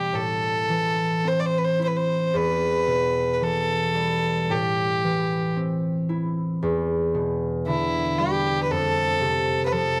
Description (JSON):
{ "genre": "celtic folk, Celtic slow air", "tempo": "54-58 BPM", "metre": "4/4", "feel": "rubato", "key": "A minor", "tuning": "A4 = 442 Hz", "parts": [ { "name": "rich fiddle", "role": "melody", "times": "0.0-10.0 s", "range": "E4 to D5", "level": "-26 LUFS", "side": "equal", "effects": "none" }, { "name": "concert harp", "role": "accompaniment", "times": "0.0-10.0 s", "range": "E2 to E4", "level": "-27 LUFS", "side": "equal", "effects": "none" } ], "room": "studio reverb", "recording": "dry, close 1970s-style studio recording", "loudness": "-24 LUFS", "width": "mono", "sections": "0.0-10.0 A section", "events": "none", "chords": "0.1 Am; 2.3 Em; 4.5 Am7; 6.6 Em7; 8.7 F" }